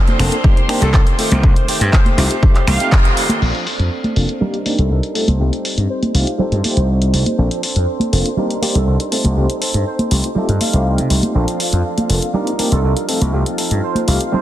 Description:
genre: filtered disco house.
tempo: 121 BPM.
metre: 4/4.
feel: straight.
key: F mixolydian.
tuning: A4 = 441 Hz.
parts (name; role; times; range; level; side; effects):
string machine, full ensemble; sustained chords; 0.0-14.4 s; F4 to C6; -26 LUFS; equal; phaser, ensemble chorus, sidechain pumping, low-pass filter.
direct-recorded clean electric guitar; riff; 0.0-14.4 s; Eb3 to Bb4; -25 LUFS; right 3 dB; sidechain pumping, low-pass filter.
punchy analog drum machine; drums; 0.1-14.3 s; crash cymbal, finger snaps, handclaps, hi-hat; -21 LUFS; left 1 dB; sidechain pumping on hats, low-pass filter on hats, soft clipping on snare, low-pass filter on snare, sidechain pumping on cymbals, low-pass filter on cymbals.
congas and tambourine; percussion; 0.1-14.4 s; none; -23 LUFS; right 1 dB; sidechain pumping on perc, low-pass filter on perc.
overdriven tine electric piano; accompaniment; 0.2-14.4 s; A3 to A4; -24 LUFS; left 1 dB; fast tremolo, phaser, vintage 12-bit sampler grit, sidechain pumping, low-pass filter.
gritty slap bass; bass; 0.2-14.2 s; F1 to C3; -15 LUFS; equal; overdrive, sidechain pumping, low-pass filter.
electronic kick drum; drums; 0.4-3.0 s; none; -12 LUFS; equal; none.
analog synth brass; melody; 0.8-14.4 s; A4 to F5; -27 LUFS; right 1 dB; chorus, sidechain pumping, low-pass filter, dub echo.
room: light reverb.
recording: dense, heavily limited modern master.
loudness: -14 LUFS.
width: side -13 dB against mid.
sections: 0.0-3.4 A section; 3.4-14.4 B section.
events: filter sweep 0.0-3.4, 3.4-14.4; band accent 2.9.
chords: 0.4 Cm9; 1.2 F9/C; 3.4 Bbmaj9; 4.4 Cm9; 5.2 F9/C; 7.4 Bbmaj9; 8.4 Cm9; 9.1 F9/C; 11.4 Bbmaj9; 12.3 Cm9; 13.1 F9/C.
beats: 0.44 0.94 | 1.43 1.93 2.43 2.92 | 3.42 3.91 4.41 4.91 | 5.40 5.90 6.39 6.89 | 7.38 7.88 8.38 8.87 | 9.37 9.86 10.36 10.86 | 11.35 11.85 12.34 12.84 | 13.34 13.83 14.33.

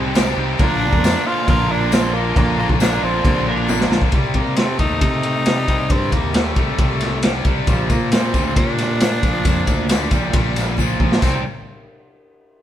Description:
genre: classic rock.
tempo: 135 BPM.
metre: 4/4.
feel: straight.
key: C minor.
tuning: A4 = 440 Hz.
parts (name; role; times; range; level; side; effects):
raspy tenor saxophone; melody; 0.0-11.4 s; G3 to F4; -24 LUFS; right 1 dB; none.
octave-fuzz lead guitar; second line; 0.0-3.9 s; F4 to C5; -29 LUFS; right 3 dB; distortion.
bright baby grand piano; accompaniment; 0.0-4.0 s; Bb3 to C5; -29 LUFS; right 6 dB; none.
picked steel-string acoustic guitar; accompaniment; 0.0-11.4 s; Bb2 to G4; -30 LUFS; right 8 dB; none.
tight distorted guitar; riff; 0.0-11.4 s; Bb2 to G4; -24 LUFS; left 8 dB; distortion.
tight distorted guitar; riff; 0.0-11.4 s; Bb2 to Eb4; -27 LUFS; right 8 dB; distortion.
growling fingered electric bass; bass; 0.0-11.4 s; Bb1 to C3; -23 LUFS; equal; overdrive.
raw garage drum kit; drums; 0.2-11.3 s; crash cymbal, kick drum, ride cymbal, snare drum, toms; -18 LUFS; equal; none.
tambourine; percussion; 0.2-3.8, 7.7-11.4 s; none; -36 LUFS; left 6 dB; none.
room: light reverb.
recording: band playing live in one room.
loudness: -15 LUFS.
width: side -11 dB against mid.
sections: 0.0-4.1 A section; 4.1-11.2 B section; 11.2-12.6 C section.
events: drum fill 3.7-4.1, 10.8-11.2.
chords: 0.0 Cm; 0.6 Bb; 4.1 Cm; 7.7 Bb; 11.2 Cm.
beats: 0.15 | 0.59 1.04 1.48 1.92 | 2.36 2.80 3.25 3.69 | 4.13 4.57 5.02 5.46 | 5.90 6.35 6.79 7.24 | 7.68 8.12 8.56 9.01 | 9.45 9.89 10.34 10.78 | 11.22.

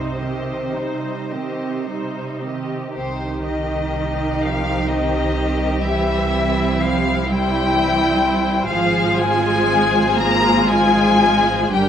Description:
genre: classical, slow romantic movement for string orchestra.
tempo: 35-43 BPM (dotted quarters).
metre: 6/8.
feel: rubato.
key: C minor.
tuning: A4 = 440 Hz.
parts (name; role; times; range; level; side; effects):
muted chamber violin section; melody; 0.0-11.9 s; C5 to Bb5; -21 LUFS; left 4 dB; none.
muted chamber violin section; second line; 0.0-11.9 s; C4 to Eb5; -25 LUFS; left 2 dB; none.
muted chamber viola section; accompaniment; 0.0-11.9 s; Eb3 to F4; -23 LUFS; right 3 dB; none.
muted chamber cello section; bass; 0.0-11.9 s; C3 to Bb3; -24 LUFS; right 1 dB; none.
muted studio double bass section; bass; 0.0-11.9 s; G1 to C2; -25 LUFS; right 2 dB; none.
room: moderate recital hall reverb, RT60 1.7 s.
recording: none.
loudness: -16 LUFS.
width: side -9 dB against mid.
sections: 0.0-3.0 A section; 3.0-11.9 A section.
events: none.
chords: 0.0 Cm; 5.9 C; 8.7 Fm/Ab.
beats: 1.34 | 2.97 4.45 | 5.87 7.29 | 8.69 10.14 | 11.74.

